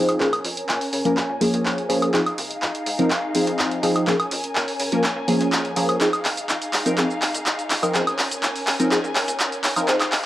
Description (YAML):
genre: filtered disco house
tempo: 124 BPM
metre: 4/4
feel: straight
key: unclear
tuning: A4 = 440 Hz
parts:
  - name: funky polysynth comp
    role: accompaniment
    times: 0.0-10.0 s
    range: F3 to Bb4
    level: -21 LUFS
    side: equal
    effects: chorus, phaser, low-pass filter
  - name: muted studio violin section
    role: sustained chords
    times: 0.0-10.3 s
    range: Db4 to Ab5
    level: -29 LUFS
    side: left 1 dB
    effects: low-pass filter
  - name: slap-like FM bass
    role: bass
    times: 0.0-10.3 s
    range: F1 to Db3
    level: -34 LUFS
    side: equal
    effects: high-pass filter, low-pass filter
  - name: punchy analog drum machine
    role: drums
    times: 0.1-10.2 s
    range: handclaps, hi-hat, shaker, woodblock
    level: -23 LUFS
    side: equal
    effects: none
room: light reverb, digital ambience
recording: dry, gritty hardware recording, cassette tape, high-pass filter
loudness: -19 LUFS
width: side -14 dB against mid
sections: 0.0-10.3 A section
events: build-up 0.0-10.3; drum fill 0.0-10.3; filter sweep 0.0-10.3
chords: 0.2 Bbm7; 2.1 Fm7; 4.1 Bbm7; 6.0 Fm7; 7.9 Bbm7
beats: | 0.20 0.69 1.17 1.65 | 2.14 2.62 3.11 3.59 | 4.07 4.56 5.04 5.53 | 6.01 6.49 6.98 7.46 | 7.95 8.43 8.91 9.40 | 9.88